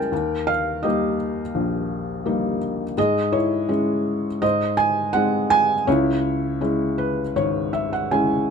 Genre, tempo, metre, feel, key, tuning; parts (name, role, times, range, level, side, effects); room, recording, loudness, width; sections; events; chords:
classical, lyrical solo piano; 83 BPM; 4/4; rubato; A4 = 441 Hz
felt-muted upright piano; solo; 0.0-8.5 s; G#1 to A5; -19 LUFS; equal
moderate studio reverb, RT60 0.6 s; -19 LUFS; side -6 dB against mid
0.0-8.5 A section
felt piano fill 6.6-8.5
0.1 D#; 3.0 C#m/G#; 4.4 G#; 5.9 C#m